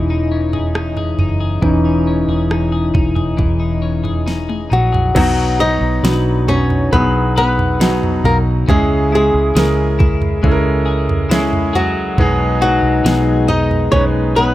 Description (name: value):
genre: pop ballad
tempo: 69 BPM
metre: 4/4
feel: straight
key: unclear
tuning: A4 = 441 Hz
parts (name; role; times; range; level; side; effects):
- warm concert grand piano; accompaniment; 0.0-14.5 s; B2 to B4; -18 LUFS; equal; none
- mellow French horn section; sustained chords; 0.0-5.1, 12.2-14.5 s; C#3 to D#4; -24 LUFS; left 3 dB; none
- twelve-string electric guitar; arpeggios; 0.0-14.5 s; B2 to B4; -26 LUFS; left 6 dB; spring reverb, digital delay
- vintage muted fingered electric bass; bass; 0.0-14.5 s; E1 to C#2; -18 LUFS; equal; none
- smooth R&B drum kit; drums; 0.5-14.1 s; crash cymbal, kick drum, rim click, snare drum, toms; -18 LUFS; right 1 dB; none
- flamenco guitar; melody; 4.7-14.5 s; F#3 to D#5; -17 LUFS; left 1 dB; none
room: light reverb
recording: none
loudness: -13 LUFS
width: side -15 dB against mid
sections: 0.0-5.2 A section; 5.2-14.5 B section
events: grand piano solo 0.0-5.2; drum fill 4.3-5.2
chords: 0.0 C#madd9/E; 5.2 B; 8.7 C#m; 12.2 G#m/B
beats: 0.76 | 1.63 2.51 3.39 4.28 | 5.16 6.04 6.93 7.81 | 8.69 9.56 10.44 11.31 | 12.18 13.05 13.93